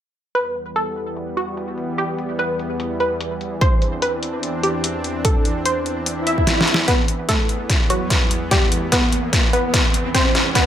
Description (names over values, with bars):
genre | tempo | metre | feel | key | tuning
heavy wobble dubstep | 147 BPM | 4/4 | swing 55% on 16ths, half-time | E minor | A4 = 440 Hz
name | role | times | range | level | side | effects
wide unison pluck | melody | 0.3-10.7 s | F#3 to E5 | -22 LUFS | equal | tape echo
supersaw pad | sustained chords | 0.6-10.7 s | E2 to D4 | -26 LUFS | equal | sidechain pumping, low-pass filter
dubstep drum kit | drums | 0.3-10.6 s | hi-hat, snare drum | -20 LUFS | left 1 dB | high-pass filter on hats, low-pass filter on hats, high-pass filter on snare, low-pass filter on snare, high-pass filter on room, low-pass filter on room
electronic kick drum | drums | 3.6-10.6 s | none | -19 LUFS | equal | none
swell and riser | sound effects | 6.2-10.7 s | none | -26 LUFS | equal | none
room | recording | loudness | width
moderate plate reverb, RT60 1.1 s | none | -17 LUFS | side -10 dB against mid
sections
0.3-6.9 A section; 6.9-10.7 B section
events
filter sweep on drum 0.3-6.9; filter sweep on supersaw synth 0.3-6.9; swell 6.2-6.9; drum fill 6.5-6.9, 6.9-10.7; build-up 6.9-10.7; riser 6.9-10.7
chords
0.3 Em; 3.6 Cadd9/E; 6.9 E5; 10.1 Cadd9/E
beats
| 0.35 0.76 1.17 1.57 | 1.98 2.39 2.80 3.21 | 3.62 4.02 4.43 4.84 | 5.25 5.66 6.06 6.47 | 6.88 7.29 7.70 8.10 | 8.51 8.92 9.33 9.74 | 10.14 10.55